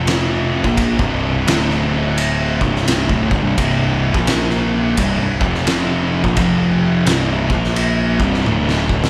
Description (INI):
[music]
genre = stoner and doom metal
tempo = 86 BPM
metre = 4/4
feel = swing 62% on 8ths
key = unclear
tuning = A4 = 441 Hz
[part]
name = thick fuzz guitar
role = riff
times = 0.0-9.1 s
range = C2 to Bb3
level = -23 LUFS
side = equal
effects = distortion
[part]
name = thick fuzz guitar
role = riff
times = 0.0-9.1 s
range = C2 to Bb3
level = -22 LUFS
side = equal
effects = distortion
[part]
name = fuzz picked electric bass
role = bass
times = 0.0-9.1 s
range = C1 to Bb1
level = -25 LUFS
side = equal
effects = overdrive
[part]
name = oversized low-tuned drum kit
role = drums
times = 0.1-9.1 s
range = kick drum, ride cymbal, snare drum, toms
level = -22 LUFS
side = equal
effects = none
[sound]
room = moderate large studio reverb, RT60 1.2 s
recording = band playing live in one room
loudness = -17 LUFS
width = mono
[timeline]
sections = 0.0-9.1 A section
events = drum fill 8.5-9.1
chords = 0.0 F5; 0.6 C5; 1.5 D5; 2.5 C5; 4.1 Bb5; 5.0 C5; 5.3 F5; 6.2 Bb5; 6.4 F5; 7.1 C5; 7.4 Bb5; 8.1 C5; 8.5 D5